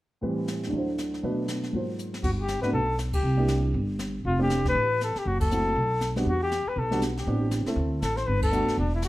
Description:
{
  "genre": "jazz, small-group swing and bop",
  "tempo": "238 BPM",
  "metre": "4/4",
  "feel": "swing 59% on 8ths",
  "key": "G major",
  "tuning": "A4 = 444 Hz",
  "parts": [
    { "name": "warm baby grand piano", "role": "accompaniment", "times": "0.2-8.8 s", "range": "D2 to C5", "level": "-29 LUFS", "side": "right 1 dB", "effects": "none" },
    { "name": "jazz brush drum kit", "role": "drums", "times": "0.2-9.1 s", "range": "brushed snare drum, crash cymbal, hi-hat, kick drum, ride cymbal, snare drum", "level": "-33 LUFS", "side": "equal", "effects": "none" },
    { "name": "warm flugelhorn", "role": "melody", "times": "2.2-9.1 s", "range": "D4 to C5", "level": "-27 LUFS", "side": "left 2 dB", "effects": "none" },
    { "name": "upright bass", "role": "bass", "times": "2.2-9.1 s", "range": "E1 to E2", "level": "-27 LUFS", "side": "equal", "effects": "none" }
  ],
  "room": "moderate large studio reverb, RT60 1.1 s",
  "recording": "dark, warm production",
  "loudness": "-24 LUFS",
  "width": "side -16 dB against mid",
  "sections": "0.2-2.2 A section; 2.2-9.1 B section",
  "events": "drum fill 2.0; band accent 3.1, 5.4, 8.4",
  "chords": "0.2 Am7; 0.7 D7; 1.2 Bm7; 1.7 Ab13; 2.2 Gadd9; 3.2 C9; 4.2 F69; 5.3 F#m7b5; 5.8 B5; 6.3 Em; 7.3 Am11; 7.8 Dsus2; 8.3 Gmaj9"
}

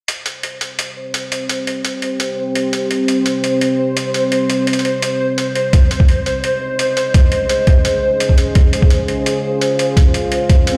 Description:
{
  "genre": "half-time drum and bass",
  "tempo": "170 BPM",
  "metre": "4/4",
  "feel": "half-time",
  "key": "C phrygian",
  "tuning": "A4 = 440 Hz",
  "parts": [
    { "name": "deep dark ambient pad", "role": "sustained chords", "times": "1.1-10.8 s", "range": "C4 to F5", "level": "-22 LUFS", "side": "equal", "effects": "chorus, built-in reverb, sidechain pumping" },
    { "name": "electronic hi-hat", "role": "drums", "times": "0.1-10.7 s", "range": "none", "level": "-24 LUFS", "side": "equal", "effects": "none" },
    { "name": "pulsing gated texture", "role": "texture", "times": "0.5-10.8 s", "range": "C5", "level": "-23 LUFS", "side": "equal", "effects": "chorus, built-in reverb" },
    { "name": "electronic kick drum", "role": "drums", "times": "5.7-10.6 s", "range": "none", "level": "-12 LUFS", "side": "equal", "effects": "none" },
    { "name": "swell", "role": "sound effects", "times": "10.7-10.8 s", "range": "none", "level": "-22 LUFS", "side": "equal", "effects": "none" }
  ],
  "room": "moderate digital room reverb, RT60 1.2 s",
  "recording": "played on a big sound system in a bare room, stone room reverb",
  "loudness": "-16 LUFS",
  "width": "mono",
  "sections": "0.1-10.8 A section",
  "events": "none",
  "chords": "0.1 C5; 5.7 Db"
}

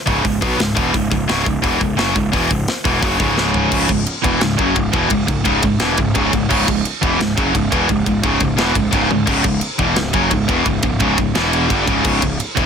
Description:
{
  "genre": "heavy metal",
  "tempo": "173 BPM",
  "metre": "4/4",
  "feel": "straight",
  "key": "C# minor",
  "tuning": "A4 = 441 Hz",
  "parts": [
    { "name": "distorted electric guitar", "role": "riff", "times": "0.1-12.7 s", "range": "C#2 to B3", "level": "-19 LUFS", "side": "left 11 dB", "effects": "overdrive" },
    { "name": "high-gain distorted guitar", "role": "riff", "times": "0.1-12.7 s", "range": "C#2 to B3", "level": "-20 LUFS", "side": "right 12 dB", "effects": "distortion" },
    { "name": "fuzz picked electric bass", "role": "bass", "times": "0.1-12.7 s", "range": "C#1 to B1", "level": "-23 LUFS", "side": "equal", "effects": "overdrive" },
    { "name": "tight metal drum kit", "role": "drums", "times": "0.1-12.7 s", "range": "crash cymbal, hi-hat, kick drum, ride cymbal, snare drum, toms", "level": "-20 LUFS", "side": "equal", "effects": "none" },
    { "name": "distorted electric guitar", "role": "riff", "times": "3.7-12.7 s", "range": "C#2 to G3", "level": "-22 LUFS", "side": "right 1 dB", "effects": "distortion" }
  ],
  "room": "light reverb",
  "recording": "dense, heavily limited modern master",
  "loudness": "-14 LUFS",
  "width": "side -7 dB against mid",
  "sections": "0.0-3.7 A section; 3.7-12.7 B section",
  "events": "drum fill 3.4-3.7, 9.1; half time 3.7-12.7",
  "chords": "0.0 C#m; 11.4 E5; 11.7 C#m"
}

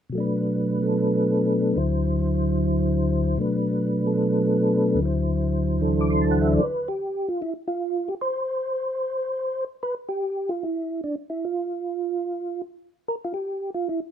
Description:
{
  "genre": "jazz",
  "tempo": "149 BPM",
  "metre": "4/4",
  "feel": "swing 64% on 8ths",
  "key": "unclear",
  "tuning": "A4 = 439 Hz",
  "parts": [
    { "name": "percussive tonewheel organ", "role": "solo", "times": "0.1-14.0 s", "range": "D2 to D6", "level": "-22 LUFS", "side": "equal", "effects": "slow rotary speaker, chorus vibrato" }
  ],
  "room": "light reverb",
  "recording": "minimal, uncompressed stereo recording",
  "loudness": "-22 LUFS",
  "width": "side -9 dB against mid",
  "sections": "0.1-6.6 A section; 6.6-14.1 B section",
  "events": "none",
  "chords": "0.1 Bm7; 1.8 D7; 3.4 Bm7; 5.0 D7; 6.6 N.C."
}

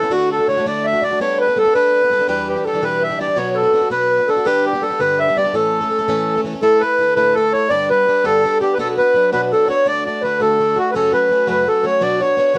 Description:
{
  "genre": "celtic folk, Celtic jig",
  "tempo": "111 BPM (dotted quarters)",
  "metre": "6/8",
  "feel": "straight",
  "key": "A mixolydian",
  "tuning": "A4 = 440 Hz",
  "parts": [
    { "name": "accordion", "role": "melody", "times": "0.0-12.6 s", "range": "F#4 to E5", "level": "-18 LUFS", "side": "equal", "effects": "cassette tape" },
    { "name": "wooden flute", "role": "second line", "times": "0.0-12.6 s", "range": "F#4 to E5", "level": "-24 LUFS", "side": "equal", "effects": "none" },
    { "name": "picked plugged-in swing-style acoustic guitar", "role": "accompaniment", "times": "0.0-12.6 s", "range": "E2 to C#5", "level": "-25 LUFS", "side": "equal", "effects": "cassette tape" }
  ],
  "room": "wet small room reverb, RT60 0.6 s",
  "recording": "home recording on cassette",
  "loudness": "-16 LUFS",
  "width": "mono",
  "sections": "0.0-6.6 A section; 6.6-12.6 B section",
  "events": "none",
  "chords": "0.1 D; 1.2 Gadd9; 2.3 Em7; 3.4 Bm; 4.5 G; 5.5 A; 6.6 Asus4; 7.7 G; 8.8 Bm; 9.9 D; 10.9 F#m; 12.0 Bmadd9"
}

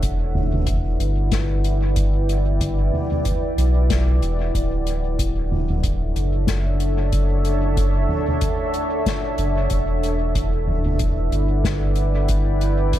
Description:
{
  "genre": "ambient dub",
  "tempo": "93 BPM",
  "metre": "4/4",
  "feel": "swing 58% on 16ths",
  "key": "E dorian",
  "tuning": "A4 = 440 Hz",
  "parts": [
    { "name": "deep dark ambient pad", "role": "sustained chords", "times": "0.0-13.0 s", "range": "D4 to G5", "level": "-25 LUFS", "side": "equal", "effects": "chorus, built-in reverb" },
    { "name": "warm sub bass", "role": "bass", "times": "0.0-13.0 s", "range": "D1 to B1", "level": "-20 LUFS", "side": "equal", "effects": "tube saturation" },
    { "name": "electronic kick drum", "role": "drums", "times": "0.0-13.0 s", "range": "none", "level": "-25 LUFS", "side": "equal", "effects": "none" },
    { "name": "soft-mallet drum kit", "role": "drums", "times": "0.0-13.0 s", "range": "hi-hat, snare drum, toms", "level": "-27 LUFS", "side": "left 1 dB", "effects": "dub echo" }
  ],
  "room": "small room ambience",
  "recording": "none",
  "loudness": "-18 LUFS",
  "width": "side -12 dB against mid",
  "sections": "0.0-13.0 A section",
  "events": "none",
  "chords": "0.0 Em7; 4.5 Dmaj7; 9.7 Em7"
}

